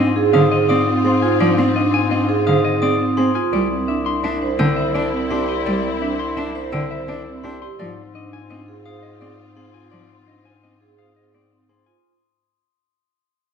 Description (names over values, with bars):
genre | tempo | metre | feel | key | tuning
classical, minimalist pattern music | 169 BPM | 6/4 | straight | unclear | A4 = 440 Hz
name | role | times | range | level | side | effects
semi-hollow electric guitar | melody | 0.0-12.1 s | G4 to C6 | -27 LUFS | left 8 dB | none
rich cello | accompaniment | 0.0-11.8 s | D3 to D4 | -23 LUFS | equal | none
rich studio string section | sustained chords | 0.0-11.8 s | C4 to F4 | -27 LUFS | left 4 dB | none
vibraphone with medium hard mallets | arpeggios | 0.0-12.1 s | C4 to D5 | -21 LUFS | right 6 dB | none
mellow bass clarinet | bass | 0.0-11.9 s | C2 to Ab2 | -24 LUFS | left 2 dB | none
glockenspiel with hard plastic mallets | arpeggios | 0.3-11.9 s | C6 to E6 | -27 LUFS | left 2 dB | none
room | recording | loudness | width
wet scoring stage reverb, RT60 1.5 s | minimal, uncompressed stereo recording | -16 LUFS | side -7 dB against mid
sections
0.0-12.1 A section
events
fade-out 0.0-12.1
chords
0.0 Ab6; 3.5 C; 7.8 Ab6